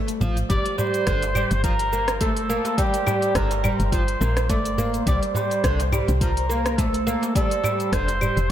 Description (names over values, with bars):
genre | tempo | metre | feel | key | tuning
organic downtempo | 105 BPM | 4/4 | swing 55% on 16ths | G minor | A4 = 439 Hz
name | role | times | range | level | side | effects
oud | arpeggios | 0.0-8.4 s | D3 to Bb3 | -25 LUFS | right 1 dB | vintage 12-bit sampler grit, ping-pong delay, shimmer reverb
deep house drum kit | drums | 0.1-8.5 s | claves, hi-hat, rim click, shaker | -30 LUFS | equal | small room ambience
darbuka | percussion | 0.1-8.5 s | none | -29 LUFS | right 2 dB | none
woody FM bass | bass | 0.2-8.5 s | F1 to C2 | -25 LUFS | equal | sidechain pumping
trumpet with cup mute | melody | 0.5-8.5 s | G4 to D5 | -27 LUFS | equal | tape echo, shimmer reverb
electronic kick drum | drums | 0.5-8.1 s | none | -25 LUFS | equal | small room ambience
wind-like tuned noise texture | texture | 2.4-8.5 s | C5 | -34 LUFS | right 2 dB | built-in reverb, shimmer reverb
room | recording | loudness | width
moderate plate reverb, RT60 1.3 s, small room ambience | dreamy mix soaked in reverb | -20 LUFS | side -11 dB against mid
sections
0.0-8.5 A section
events
none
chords
0.5 Gm; 5.1 C5; 7.4 F